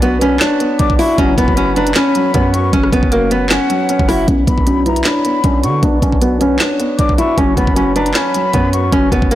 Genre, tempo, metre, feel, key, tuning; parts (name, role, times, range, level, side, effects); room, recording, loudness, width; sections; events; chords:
hip hop, trap; 155 BPM; 4/4; half-time; B minor; A4 = 441 Hz
nylon-string guitar; melody; 0.0-9.3 s; A#3 to E4; -15 LUFS; left 1 dB; low-pass filter
felt-muted upright piano; accompaniment; 0.0-9.3 s; F#3 to C#5; -19 LUFS; right 2 dB; low-pass filter
hard-hitting 808-style bass; bass; 0.0-9.3 s; F#1 to D3; -19 LUFS; equal
trap drum kit; drums; 0.0-9.3 s; handclaps, hi-hat, kick drum, rim click, snare drum; -17 LUFS; equal; overdrive
breathy hollow jazz flute; second line; 0.8-8.9 s; F#5 to D6; -22 LUFS; left 3 dB; digital delay
warm brass ensemble; stabs; 1.2-1.5 s; C#2 to F#3; -25 LUFS; left 5 dB
light reverb, studio ambience; blown-out, overdriven recording, overdrive; -11 LUFS; side -13 dB against mid
0.0-4.3 A section; 4.3-9.3 B section
filter sweep 4.3-9.3
0.0 Bmadd9; 1.2 F#sus4; 4.3 Bmadd9; 7.4 F#sus4